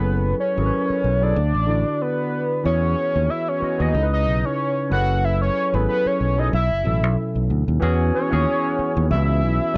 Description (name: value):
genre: R&B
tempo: 93 BPM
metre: 4/4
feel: swing 55% on 16ths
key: E major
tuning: A4 = 441 Hz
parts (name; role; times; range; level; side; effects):
- fat analog lead; melody; 0.0-9.8 s; B4 to F#5; -25 LUFS; equal; slapback echo
- barky tine electric piano; accompaniment; 0.0-9.8 s; B2 to D#5; -27 LUFS; equal; overdrive, subtle chorus
- fingered electric bass; bass; 0.0-9.8 s; F#1 to E2; -23 LUFS; equal; none
room: little or no reverb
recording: dry, close 1970s-style studio recording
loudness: -21 LUFS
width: mono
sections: 0.0-7.8 A section; 7.8-9.8 B section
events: none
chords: 0.0 F#m11; 1.3 D; 2.6 E6; 3.9 C#m9; 4.9 F#m11; 6.5 B9sus4; 7.8 E69